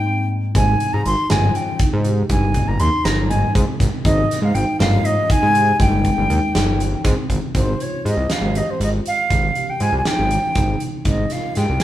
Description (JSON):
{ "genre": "progressive instrumental, band music in an uneven meter", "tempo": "240 BPM (eighths)", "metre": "7/8", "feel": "straight", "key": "Ab major", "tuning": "A4 = 440 Hz", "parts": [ { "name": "reedy concert flute", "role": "melody", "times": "0.0-11.8 s", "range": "C5 to C6", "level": "-21 LUFS", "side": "equal", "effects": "none" }, { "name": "bell-like tine electric piano", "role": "accompaniment", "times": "0.0-6.5 s", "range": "Ab2 to Eb4", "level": "-24 LUFS", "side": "left 1 dB", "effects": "none" }, { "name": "marimba with medium mallets", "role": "arpeggios", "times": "0.1-11.8 s", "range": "C4 to G4", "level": "-27 LUFS", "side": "right 1 dB", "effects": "none" }, { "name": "big rock drum kit", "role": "drums", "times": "0.5-11.8 s", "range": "hi-hat, kick drum, snare drum", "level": "-21 LUFS", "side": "equal", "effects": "none" }, { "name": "fat analog bass", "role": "bass", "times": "0.6-11.8 s", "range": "G1 to Ab2", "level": "-20 LUFS", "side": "equal", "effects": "none" } ], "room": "moderate large studio reverb, RT60 1.3 s", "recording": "band playing live in one room", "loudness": "-16 LUFS", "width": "side -13 dB against mid", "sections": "0.0-7.6 A section; 7.6-11.8 B section", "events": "none", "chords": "0.0 Abmaj7", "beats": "0.06 0.31 | 0.56 0.81 1.05 1.30 1.55 1.80 2.05 | 2.30 2.55 2.80 3.05 3.30 3.55 3.80 | 4.05 4.30 4.55 4.80 5.05 5.30 5.55 | 5.80 6.05 6.30 6.55 6.80 7.05 7.30 | 7.55 7.80 8.05 8.30 8.55 8.80 9.05 | 9.30 9.56 9.81 10.06 10.31 10.56 10.81 | 11.06 11.31 11.56 11.81" }